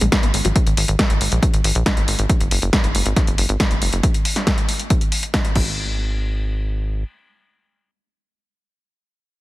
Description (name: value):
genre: uplifting trance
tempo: 138 BPM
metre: 4/4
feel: straight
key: unclear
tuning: A4 = 440 Hz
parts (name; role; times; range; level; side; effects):
- tight sequenced synth; arpeggios; 0.0-0.5 s; F#3 to B3; -25 LUFS; left 1 dB; chorus, sidechain pumping, digital delay
- tight sequencer bass; bass; 0.0-7.0 s; F#1 to A#1; -21 LUFS; equal; sidechain pumping
- punchy analog drum machine; drums; 0.0-5.6 s; crash cymbal, hi-hat, snare drum; -21 LUFS; equal; none
- electronic kick drum; drums; 0.1-5.6 s; none; -19 LUFS; equal; none
room: light reverb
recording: heavily compressed radio sound, multiband compression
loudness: -16 LUFS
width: side -18 dB against mid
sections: 0.0-5.8 A section; 5.8-9.3 B section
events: none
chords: none